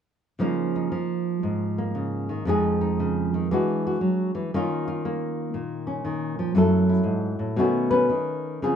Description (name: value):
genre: solo jazz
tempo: 117 BPM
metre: 4/4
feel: swing 66% on 8ths, rubato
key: Db major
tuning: A4 = 441 Hz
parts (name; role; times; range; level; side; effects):
- nylon-string guitar; solo; 0.4-8.8 s; F2 to Cb5; -22 LUFS; equal; none
room: moderate club reverb, RT60 0.8 s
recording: dark, warm production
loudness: -22 LUFS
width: side -8 dB against mid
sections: 0.4-8.6 A section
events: none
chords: 0.4 Db69; 2.5 Fm7; 3.5 E9; 4.5 Ebsus2; 6.5 Gbm7; 7.6 Cb9